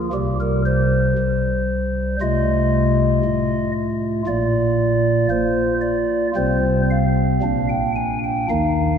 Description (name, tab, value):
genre	classical, chorale-style piece for pipe organ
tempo	58 BPM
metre	4/4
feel	rubato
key	unclear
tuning	A4 = 435 Hz
part	chamber organ, stopped flute	solo	0.0-9.0 s	Bb1 to Ab5	-17 LUFS	equal	none
room	wet church reverb, RT60 2.9 s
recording	minimal, uncompressed stereo recording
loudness	-17 LUFS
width	side -7 dB against mid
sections	0.0-9.0 A section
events	none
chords	0.1 C5; 2.2 F7/C; 4.3 Bb; 6.4 C5; 7.4 Bb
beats	| 0.13 1.18 2.20 3.23 | 4.26 5.29 6.35 7.42 | 8.50